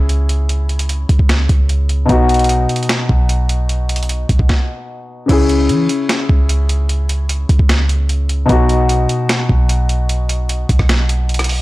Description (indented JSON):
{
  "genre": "hip hop, trap",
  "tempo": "150 BPM",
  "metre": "4/4",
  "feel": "half-time",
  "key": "C# minor",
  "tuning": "A4 = 440 Hz",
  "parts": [
    { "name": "dark grand piano", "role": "accompaniment", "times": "0.0-11.6 s", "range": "B2 to G#4", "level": "-18 LUFS", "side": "left 2 dB", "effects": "low-pass filter" },
    { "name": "clean 808-style bass", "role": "bass", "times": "0.0-11.6 s", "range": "B1 to E3", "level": "-15 LUFS", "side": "equal", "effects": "none" },
    { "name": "boom bap sampler-style drum kit", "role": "drums", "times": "0.1-11.6 s", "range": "crash cymbal, finger snaps, hi-hat, kick drum, rim click, snare drum", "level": "-17 LUFS", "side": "equal", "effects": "soft clipping on snare" }
  ],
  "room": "digital ambience",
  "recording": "blown-out, overdriven recording, overdrive",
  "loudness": "-12 LUFS",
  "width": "side -18 dB against mid",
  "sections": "0.0-5.3 A section; 5.3-11.6 B section",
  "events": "stop 4.5-5.3",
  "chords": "0.0 C#m; 2.1 B; 5.3 C#m; 8.5 B",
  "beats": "0.09 | 0.49 0.89 1.29 1.69 | 2.09 2.49 2.89 3.29 | 3.69 4.09 4.49 4.89 | 5.29 5.69 6.09 6.49 | 6.89 7.29 7.69 8.09 | 8.49 8.89 9.29 9.69 | 10.09 10.49 10.89 11.29"
}